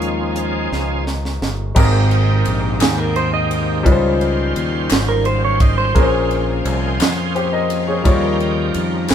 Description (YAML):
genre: slow gospel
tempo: 57 BPM (dotted quarters)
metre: 6/8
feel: straight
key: Ab major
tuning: A4 = 440 Hz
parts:
  - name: clear grand piano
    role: accompaniment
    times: 0.0-9.1 s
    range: Ab2 to Eb5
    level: -20 LUFS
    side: left 2 dB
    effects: none
  - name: bright tonewheel organ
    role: sustained chords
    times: 0.0-9.1 s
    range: Eb3 to C5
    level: -23 LUFS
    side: right 1 dB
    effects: overdrive, chorus vibrato, slow rotary speaker
  - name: muted French horn section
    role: sustained chords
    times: 0.0-1.7 s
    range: F3 to F4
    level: -30 LUFS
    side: right 1 dB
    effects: none
  - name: modern bright fingered electric bass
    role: bass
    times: 0.0-9.1 s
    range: G1 to F2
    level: -20 LUFS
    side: equal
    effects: none
  - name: tight funk drum kit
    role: drums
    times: 0.0-9.1 s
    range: crash cymbal, hi-hat, kick drum, ride cymbal, snare drum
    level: -18 LUFS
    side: right 1 dB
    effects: none
  - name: clean electric guitar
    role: second line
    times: 2.8-6.1 s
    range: Ab4 to Eb5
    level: -20 LUFS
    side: right 4 dB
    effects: none
  - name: group handclap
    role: percussion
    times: 2.8-9.1 s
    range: none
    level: -26 LUFS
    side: left 6 dB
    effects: none
room: wet studio ambience, RT60 0.5 s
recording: band playing live in one room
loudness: -15 LUFS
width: side -9 dB against mid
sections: 0.0-1.8 A section; 1.8-9.1 B section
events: tonewheel organ solo 0.0-1.8; drum fill 0.7-1.8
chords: 0.0 Eb9sus4; 1.8 Abmaj9; 3.9 Dbmaj9#11; 6.0 Bbm9; 8.1 Eb9